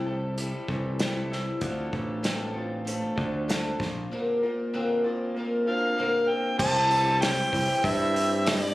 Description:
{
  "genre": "folk rock and heartland rock",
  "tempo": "96 BPM",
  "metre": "4/4",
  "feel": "straight",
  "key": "C major",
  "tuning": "A4 = 445 Hz",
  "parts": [
    { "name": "picked twelve-string acoustic guitar", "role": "accompaniment", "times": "0.0-8.7 s", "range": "Bb2 to C5", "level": "-30 LUFS", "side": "left 1 dB", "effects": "none" },
    { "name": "electric guitar through a small old amp", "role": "riff", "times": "0.0-8.7 s", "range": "Bb2 to A4", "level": "-34 LUFS", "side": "right 1 dB", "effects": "none" },
    { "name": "modern bright picked electric bass", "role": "bass", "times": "0.0-8.7 s", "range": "A1 to G2", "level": "-31 LUFS", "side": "equal", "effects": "none" },
    { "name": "unplugged drum kit", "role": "drums", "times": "0.4-8.6 s", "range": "crash cymbal, hi-hat, kick drum, snare drum", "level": "-30 LUFS", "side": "equal", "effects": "none" },
    { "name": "overdriven harmonica", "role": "melody", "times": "5.7-8.7 s", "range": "D5 to A5", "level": "-25 LUFS", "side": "equal", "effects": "none" },
    { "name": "bright upright piano", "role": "accompaniment", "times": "6.6-8.7 s", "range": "E4 to C5", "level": "-42 LUFS", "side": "right 2 dB", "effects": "none" },
    { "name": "tonewheel organ", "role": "sustained chords", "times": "6.6-8.7 s", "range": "C4 to G4", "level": "-37 LUFS", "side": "equal", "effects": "chorus vibrato, fast rotary speaker" }
  ],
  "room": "light reverb",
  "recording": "recorded on a phone in the room, studio reverb",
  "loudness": "-24 LUFS",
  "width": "side -17 dB against mid",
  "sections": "0.0-6.6 A section; 6.6-8.7 B section",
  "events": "none",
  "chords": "0.0 C6; 1.6 Dm7; 3.8 Bbadd9; 6.6 C"
}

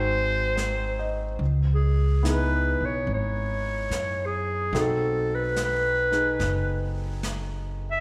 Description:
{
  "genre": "jazz ballad",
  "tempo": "72 BPM",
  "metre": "4/4",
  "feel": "swing 68% on 8ths",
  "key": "C# minor",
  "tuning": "A4 = 439 Hz",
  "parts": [
    { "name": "breathy clarinet", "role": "melody", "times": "0.0-8.0 s", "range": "G#4 to E5", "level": "-29 LUFS", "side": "equal", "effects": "slapback echo" },
    { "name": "warm concert grand piano", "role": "accompaniment", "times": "0.0-8.0 s", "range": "B3 to D#5", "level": "-35 LUFS", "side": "equal", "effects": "slapback echo" },
    { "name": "upright bass", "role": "bass", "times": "0.0-8.0 s", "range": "F#1 to F#2", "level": "-29 LUFS", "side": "equal", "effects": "none" },
    { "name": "jazz brush drum kit", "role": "drums", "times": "0.6-8.0 s", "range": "brushed snare drum, hi-hat, snare drum", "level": "-40 LUFS", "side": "equal", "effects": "none" }
  ],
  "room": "light reverb, studio reverb",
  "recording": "live gig heard through the venue's PA, club reverb",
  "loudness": "-26 LUFS",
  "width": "mono",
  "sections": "0.0-1.4 A section; 1.4-8.0 B section",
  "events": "clarinet solo 1.4-8.0",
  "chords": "0.0 G#7; 1.4 C#m9; 4.7 B7b9"
}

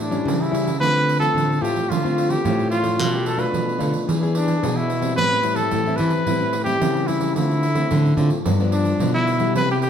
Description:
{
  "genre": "samba and choro",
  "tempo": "110 BPM",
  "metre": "4/4",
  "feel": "straight",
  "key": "unclear",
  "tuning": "A4 = 440 Hz",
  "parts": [
    { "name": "breathy trumpet", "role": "melody", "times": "0.0-9.9 s", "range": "D4 to B4", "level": "-22 LUFS", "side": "equal", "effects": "none" },
    { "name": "nylon-string guitar", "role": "accompaniment", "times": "0.0-9.9 s", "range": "G2 to G#4", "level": "-24 LUFS", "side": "left 4 dB", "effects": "none" },
    { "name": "nylon-string guitar", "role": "bass", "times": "0.0-9.9 s", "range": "G2 to E3", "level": "-22 LUFS", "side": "equal", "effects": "none" },
    { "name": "pandeiro", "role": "percussion", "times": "0.0-9.9 s", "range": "none", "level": "-27 LUFS", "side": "right 5 dB", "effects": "none" }
  ],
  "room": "wet large studio reverb, RT60 1.2 s",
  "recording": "band playing live in one room",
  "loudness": "-18 LUFS",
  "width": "side -8 dB against mid",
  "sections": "0.0-9.9 A section",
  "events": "none",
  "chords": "0.0 A7; 0.8 Dm7; 3.0 Bm7b5; 4.1 E7; 5.2 Am7; 7.4 Dm7; 8.5 G7"
}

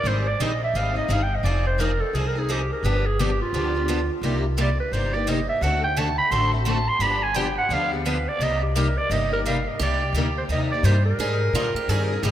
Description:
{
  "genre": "acoustic string swing (jazz manouche)",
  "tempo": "172 BPM",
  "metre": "4/4",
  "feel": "swing 61% on 8ths",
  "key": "C minor",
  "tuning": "A4 = 441 Hz",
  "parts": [
    { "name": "growling clarinet", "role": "melody", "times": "0.0-12.3 s", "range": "F4 to C6", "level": "-24 LUFS", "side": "right 1 dB", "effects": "analog delay" },
    { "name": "picked steel-string acoustic guitar", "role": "accompaniment", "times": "0.0-12.3 s", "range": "C3 to A4", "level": "-28 LUFS", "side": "left 3 dB", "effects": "ensemble chorus" },
    { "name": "upright bass", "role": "bass", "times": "0.0-12.3 s", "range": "F1 to Bb2", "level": "-25 LUFS", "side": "equal", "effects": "none" },
    { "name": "picked steel-string acoustic guitar", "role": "accompaniment", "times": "0.1-12.3 s", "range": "C3 to A4", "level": "-32 LUFS", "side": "right 5 dB", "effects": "none" },
    { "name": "picked steel-string acoustic guitar", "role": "second line", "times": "9.8-12.3 s", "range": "F4 to Ab4", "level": "-30 LUFS", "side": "right 4 dB", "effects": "none" }
  ],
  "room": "moderate plate reverb, RT60 3.6 s",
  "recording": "dreamy mix soaked in reverb",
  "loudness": "-20 LUFS",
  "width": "side -11 dB against mid",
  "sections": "0.0-9.8 A section; 9.8-12.3 B section",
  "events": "clarinet solo 0.0-9.8",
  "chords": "0.1 Abmaj9; 1.4 Fm7; 2.8 G7; 4.2 Cm7; 5.6 D7; 7.0 G7; 8.4 Cm7; 9.8 Cm9; 11.2 Abmaj9"
}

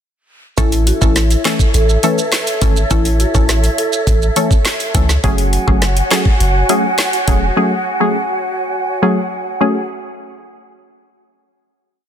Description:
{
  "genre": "dancehall",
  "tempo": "103 BPM",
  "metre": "4/4",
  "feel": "straight",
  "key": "F# minor",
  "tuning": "A4 = 441 Hz",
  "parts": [
    { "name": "marimba with soft mallets", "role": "melody", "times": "0.6-4.5 s", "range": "E4 to C#5", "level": "-21 LUFS", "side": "right 1 dB", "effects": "tape echo" },
    { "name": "wavetable chord stab", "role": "accompaniment", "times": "0.6-9.8 s", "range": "E3 to A4", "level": "-18 LUFS", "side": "left 1 dB", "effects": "none" },
    { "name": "large flute ensemble", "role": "sustained chords", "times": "0.6-9.9 s", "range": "F#4 to G#5", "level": "-21 LUFS", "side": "right 1 dB", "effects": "sidechain pumping" },
    { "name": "punchy sub bass", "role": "bass", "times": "0.6-7.5 s", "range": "E1 to C#2", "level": "-15 LUFS", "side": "equal", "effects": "none" },
    { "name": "island pop drum kit", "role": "drums", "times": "0.6-7.4 s", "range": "handclaps, hi-hat, kick drum, rim click, snare drum", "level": "-16 LUFS", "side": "equal", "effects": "none" },
    { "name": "maracas", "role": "percussion", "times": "0.6-5.2 s", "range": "none", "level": "-26 LUFS", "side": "right 7 dB", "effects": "none" }
  ],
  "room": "light reverb, small room reverb",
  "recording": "dense, heavily limited modern master",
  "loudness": "-12 LUFS",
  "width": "side -9 dB against mid",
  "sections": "0.6-9.9 chorus",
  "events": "none",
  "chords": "0.6 A; 5.2 F#madd9"
}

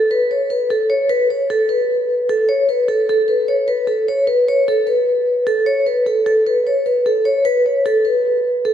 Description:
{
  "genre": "hip hop",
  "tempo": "151 BPM",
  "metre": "4/4",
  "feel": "half-time",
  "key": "unclear",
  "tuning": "A4 = 439 Hz",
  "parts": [
    { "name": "vibraphone with medium mallets", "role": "solo", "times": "0.0-8.7 s", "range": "A4 to C#5", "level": "-14 LUFS", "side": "equal", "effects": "none" }
  ],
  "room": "wet lush hall reverb, RT60 2.5 s",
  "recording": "dreamy mix soaked in reverb",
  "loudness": "-14 LUFS",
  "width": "side -9 dB against mid",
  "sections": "0.0-7.9 A section",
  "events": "none",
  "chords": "none"
}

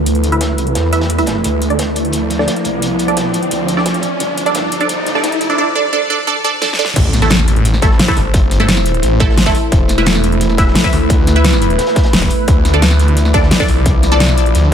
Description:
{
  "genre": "dark technical drum and bass",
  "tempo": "174 BPM",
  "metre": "4/4",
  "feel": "straight",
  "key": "A minor",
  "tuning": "A4 = 440 Hz",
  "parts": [
    { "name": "deep dark ambient pad", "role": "sustained chords", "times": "0.0-14.7 s", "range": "F3 to D5", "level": "-18 LUFS", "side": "equal", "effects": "chorus, built-in reverb, vintage 12-bit sampler grit, sidechain pumping" },
    { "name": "snarling distorted saw bass", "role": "bass", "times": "0.0-14.7 s", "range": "E1 to E2", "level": "-15 LUFS", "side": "equal", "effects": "distortion, overdrive" },
    { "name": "riser and impact", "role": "sound effects", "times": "0.1-8.3 s", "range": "none", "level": "-22 LUFS", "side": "equal", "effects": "none" },
    { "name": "crunchy breakbeat drum kit", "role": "drums", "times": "0.1-14.6 s", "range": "hi-hat, snare drum", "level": "-27 LUFS", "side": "equal", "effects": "high-pass filter on hats, high-pass filter on snare, high-pass filter on room" },
    { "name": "dubstep drum kit", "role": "drums", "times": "0.1-14.6 s", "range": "crash cymbal, hi-hat, snare drum", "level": "-18 LUFS", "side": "equal", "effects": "none" },
    { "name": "filtered dub chord stab", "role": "stabs", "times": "0.3-14.2 s", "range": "A3 to E5", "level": "-18 LUFS", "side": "right 2 dB", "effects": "phaser, ping-pong delay" },
    { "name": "electronic kick drum", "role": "drums", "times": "7.0-13.9 s", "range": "none", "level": "-14 LUFS", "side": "equal", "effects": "distortion" }
  ],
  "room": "light reverb",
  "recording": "high-pass filter",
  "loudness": "-11 LUFS",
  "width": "side -8 dB against mid",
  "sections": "0.0-7.0 A section; 7.0-14.7 B section",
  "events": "build-up 0.0-7.0; filter sweep on synth stab 0.0-7.0; filter sweep 0.0-7.0; riser 0.1-5.6; drum fill 6.6-7.0; drop 7.0-14.7; impact 7.0-8.3",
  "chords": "0.0 Esus4; 1.4 Dmadd9; 4.2 Gsus4; 7.0 Am; 9.7 Esus4; 12.5 Dmadd9"
}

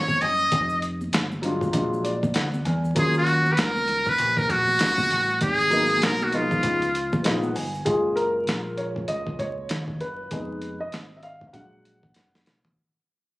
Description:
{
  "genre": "hip hop, jazz-hop",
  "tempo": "98 BPM",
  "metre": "4/4",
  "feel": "swing 60% on 16ths",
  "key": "F# major",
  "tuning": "A4 = 440 Hz",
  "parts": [
    { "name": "trumpet with metal mute", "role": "melody", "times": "0.0-7.3 s", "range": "E#4 to D#5", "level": "-21 LUFS", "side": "equal", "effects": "none" },
    { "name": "deep dub fingered electric bass", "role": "bass", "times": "0.0-12.8 s", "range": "F1 to E2", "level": "-30 LUFS", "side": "equal", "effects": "none" },
    { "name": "boom bap sampler-style drum kit", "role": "drums", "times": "0.1-12.8 s", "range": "hi-hat, kick drum, snare drum, toms", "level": "-27 LUFS", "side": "equal", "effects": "none" },
    { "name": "congas and maracas", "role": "percussion", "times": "0.1-7.9 s", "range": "none", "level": "-36 LUFS", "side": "right 1 dB", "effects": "none" },
    { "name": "dark baby grand piano", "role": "accompaniment", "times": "1.4-12.4 s", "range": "A#2 to G#5", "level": "-26 LUFS", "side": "left 1 dB", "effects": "none" }
  ],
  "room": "light reverb, small room ambience",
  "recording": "recorded on a phone in the room, club ambience, vinyl crackle, compression",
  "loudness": "-21 LUFS",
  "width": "side -20 dB against mid",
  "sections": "0.0-7.9 A section; 7.9-12.8 B section",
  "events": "grand piano fill 1.7-3.0, 6.9-7.9; fade-out 7.9-12.8; grand piano solo 7.9-12.8; drum fill 12.1-12.8",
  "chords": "0.0 B (rootless); 0.5 Fmadd9; 1.7 A#7b13; 3.0 D#m9; 5.4 G#m9; 6.6 C#9; 7.9 F#maj9; 10.3 Fm7b5; 11.5 A#aug7"
}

